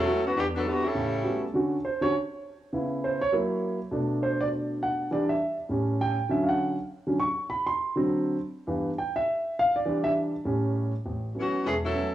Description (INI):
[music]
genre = jazz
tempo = 202 BPM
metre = 4/4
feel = swing 60% on 8ths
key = D major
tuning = A4 = 442 Hz
[part]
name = clear saxophone section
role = melody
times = 0.0-1.4, 11.4-12.1 s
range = D3 to A4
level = -26 LUFS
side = left 1 dB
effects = cassette tape
[part]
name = warm grand piano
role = accompaniment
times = 0.1-12.1 s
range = E1 to C#6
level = -26 LUFS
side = right 1 dB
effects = cassette tape
[sound]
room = moderate spring reverb, RT60 2.0 s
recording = home recording on cassette, small room ambience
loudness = -25 LUFS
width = side -13 dB against mid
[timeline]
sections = 0.0-1.5 A section; 1.5-11.0 B section; 11.0-12.1 A section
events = grand piano solo 1.5-11.0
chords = 0.3 Em7; 0.9 A13; 1.5 Dmaj7; 2.7 C#m7; 3.3 F#7; 3.9 Bm7; 5.1 Em7; 5.7 A7; 6.3 Dmaj7; 7.5 D7; 8.7 G6; 9.9 Em7; 10.5 A7; 11.0 A69